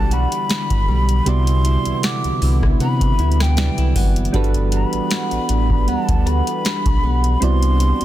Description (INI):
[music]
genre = contemporary R&B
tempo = 78 BPM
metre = 4/4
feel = swing 54% on 16ths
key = unclear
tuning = A4 = 439 Hz
[part]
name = breathy mellow jazz flute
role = melody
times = 0.0-8.0 s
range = G5 to D6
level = -25 LUFS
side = left 2 dB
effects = tape echo
[part]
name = soft electric-piano-like synth keys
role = accompaniment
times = 0.0-8.0 s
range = C3 to D5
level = -25 LUFS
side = right 4 dB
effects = chorus
[part]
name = chorused pulse-width pad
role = sustained chords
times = 0.0-8.0 s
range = D3 to F#5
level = -26 LUFS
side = right 1 dB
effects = none
[part]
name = flamenco guitar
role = arpeggios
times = 0.0-8.0 s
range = C3 to F#4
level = -28 LUFS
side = right 1 dB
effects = tape echo
[part]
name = sub bass with octave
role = bass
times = 0.0-8.0 s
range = F#1 to C3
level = -18 LUFS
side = equal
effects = none
[part]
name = booming analog drum machine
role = drums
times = 0.1-8.0 s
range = hi-hat, kick drum, rim click, snare drum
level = -20 LUFS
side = equal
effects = none
[part]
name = mallet-like synth pluck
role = texture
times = 3.6-7.0 s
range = A4 to B4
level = -38 LUFS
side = left 3 dB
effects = none
[sound]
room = little or no reverb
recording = dense, heavily limited modern master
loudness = -15 LUFS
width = side -13 dB against mid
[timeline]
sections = 0.0-8.0 A section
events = none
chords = 0.0 Em9; 1.3 Cmaj9#11; 4.3 Gmaj7; 7.4 Cmaj9#11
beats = 0.49 | 1.26 2.03 2.80 3.57 | 4.34 5.11 5.88 6.65 | 7.42